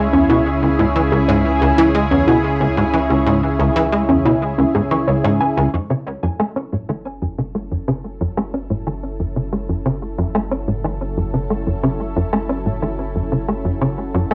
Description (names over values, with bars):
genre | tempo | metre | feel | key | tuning
ambient, sequencer-driven space music | 91 BPM | 4/4 | straight | C# minor | A4 = 440 Hz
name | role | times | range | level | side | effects
lush unison pad | sustained chords | 0.0-14.3 s | C#3 to A4 | -24 LUFS | equal | chorus, cassette tape
tight sequencer bass | riff | 0.0-14.3 s | C#2 to C#4 | -21 LUFS | equal | ensemble chorus, cassette tape, tape echo
round analog bass | bass | 0.0-14.3 s | F#1 to C#2 | -29 LUFS | equal | none
warbly dusty pluck | arpeggios | 0.1-5.6 s | C#4 to C#6 | -22 LUFS | equal | chorus, cassette tape, tape echo
room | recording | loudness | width
wet small room ambience, RT60 0.5 s | home recording on cassette | -18 LUFS | mono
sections
0.0-5.7 A section; 5.7-14.3 B section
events
fade-in on analog synth pad 5.7-14.3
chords
0.0 C#m; 5.7 F#m7